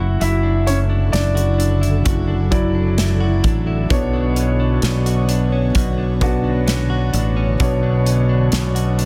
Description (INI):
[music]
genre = pop ballad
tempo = 65 BPM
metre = 4/4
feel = straight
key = unclear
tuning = A4 = 440 Hz
[part]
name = clear concert grand piano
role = melody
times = 0.0-2.9 s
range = C#4 to F#5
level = -26 LUFS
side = equal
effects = none
[part]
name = felt-muted upright piano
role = accompaniment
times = 0.0-9.1 s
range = B2 to E5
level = -25 LUFS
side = equal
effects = none
[part]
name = ethereal airy pad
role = sustained chords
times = 0.0-9.1 s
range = D3 to C#5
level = -30 LUFS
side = equal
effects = ensemble chorus, built-in reverb
[part]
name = direct-recorded clean electric guitar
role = arpeggios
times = 0.0-9.1 s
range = F#2 to F#4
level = -28 LUFS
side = equal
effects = digital delay
[part]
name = fingered electric bass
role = bass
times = 0.0-9.1 s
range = F#1 to B1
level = -20 LUFS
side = equal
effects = none
[part]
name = modern studio drum kit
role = drums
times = 0.2-9.1 s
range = hi-hat, kick drum, snare drum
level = -24 LUFS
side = equal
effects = none
[sound]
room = light reverb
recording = dense, heavily limited modern master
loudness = -17 LUFS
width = mono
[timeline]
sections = 0.0-9.1 A section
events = none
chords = 0.0 Dadd9/F#; 3.9 Bmadd9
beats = | 0.21 1.14 2.06 2.98 | 3.91 4.83 5.75 6.67 | 7.60 8.52